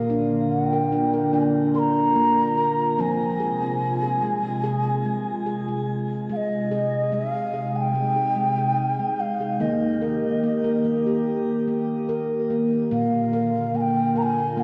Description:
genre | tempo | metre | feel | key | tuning
world meditative, meditative tuned percussion | 73 BPM | 4/4 | straight | Ab lydian | A4 = 440 Hz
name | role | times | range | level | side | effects
mellow bansuri | melody | 0.0-14.6 s | Eb5 to C6 | -27 LUFS | equal | shimmer reverb, tape echo
warbly tape-like pad | sustained chords | 0.0-14.6 s | C3 to G4 | -30 LUFS | equal | chorus, built-in reverb
handpan | arpeggios | 0.0-14.6 s | Bb2 to Bb4 | -26 LUFS | equal | shimmer reverb, tape echo
room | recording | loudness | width
wet concert hall reverb, RT60 1.9 s, studio reverb | worn, warbling old tape, cassette tape, warbly pitch drift | -23 LUFS | mono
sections
0.0-6.3 A section; 6.3-14.6 B section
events
none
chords
0.0 Bb; 3.0 Fm; 6.3 Ab; 9.6 Eb; 12.9 Bb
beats
0.51 1.34 2.17 | 2.99 3.82 4.65 5.47 | 6.30 7.13 7.95 8.78 | 9.61 10.44 11.26 12.09 | 12.92 13.75 14.57

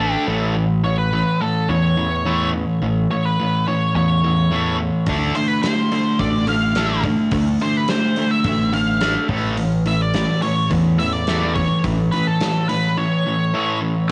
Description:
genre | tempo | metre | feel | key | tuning
indie rock | 106 BPM | 4/4 | straight | unclear | A4 = 440 Hz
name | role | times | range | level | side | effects
octave-fuzz lead guitar | melody | 0.0-13.8 s | A4 to F5 | -26 LUFS | equal | distortion, cassette tape, tape echo
fuzz guitar | riff | 0.0-14.1 s | A2 to D4 | -22 LUFS | equal | distortion, cassette tape
growling fingered electric bass | bass | 0.0-12.1 s | A1 to E2 | -25 LUFS | equal | overdrive
big rock drum kit | drums | 5.1-12.8 s | hi-hat, kick drum, snare drum | -29 LUFS | equal | cassette tape
room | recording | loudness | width
studio reverb | home recording on cassette, nothing above 10.3 kHz | -19 LUFS | mono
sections
0.0-14.1 A section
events
none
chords
0.3 A; 5.1 Dm7; 9.3 A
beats
| 0.56 1.12 1.68 2.25 | 2.81 3.38 3.94 4.50 | 5.07 5.63 6.20 6.76 | 7.32 7.89 8.45 9.02 | 9.58 10.15 10.71 11.28 | 11.84 12.40 12.97 13.53

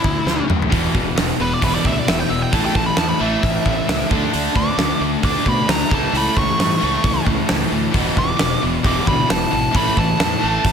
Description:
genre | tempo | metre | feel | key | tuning
hard rock | 133 BPM | 4/4 | straight | unclear | A4 = 439 Hz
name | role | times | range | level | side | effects
nasal lead guitar with a parked wah | melody | 0.0-10.7 s | E4 to D6 | -22 LUFS | right 1 dB | overdrive, slapback echo
scooped high-gain guitar | riff | 0.0-10.7 s | E2 to D4 | -24 LUFS | left 9 dB | distortion, slapback echo
fuzz fingered electric bass | bass | 0.0-10.7 s | E1 to B2 | -25 LUFS | equal | overdrive
gated 80s drum kit | drums | 0.0-10.7 s | hi-hat, kick drum, snare drum, toms | -20 LUFS | equal | none
crunchy overdriven guitar | riff | 0.7-10.7 s | E2 to D4 | -24 LUFS | right 1 dB | none
overdriven semi-hollow guitar | riff | 0.7-10.7 s | E2 to D4 | -26 LUFS | right 10 dB | slapback echo
room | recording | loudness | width
moderate concert hall reverb, RT60 2.1 s | big arena sound | -15 LUFS | side -7 dB against mid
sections
0.0-10.7 A section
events
lead electric guitar solo 0.0-10.7; drum fill 0.3-0.7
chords
0.0 D; 0.7 E5; 2.5 A5; 4.1 D5; 5.9 A/C#; 7.9 E5; 9.7 A5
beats
0.27 | 0.72 1.17 1.62 2.07 | 2.52 2.98 3.43 3.88 | 4.33 4.78 5.23 5.68 | 6.14 6.59 7.04 7.49 | 7.94 8.39 8.85 9.30 | 9.75 10.20 10.65

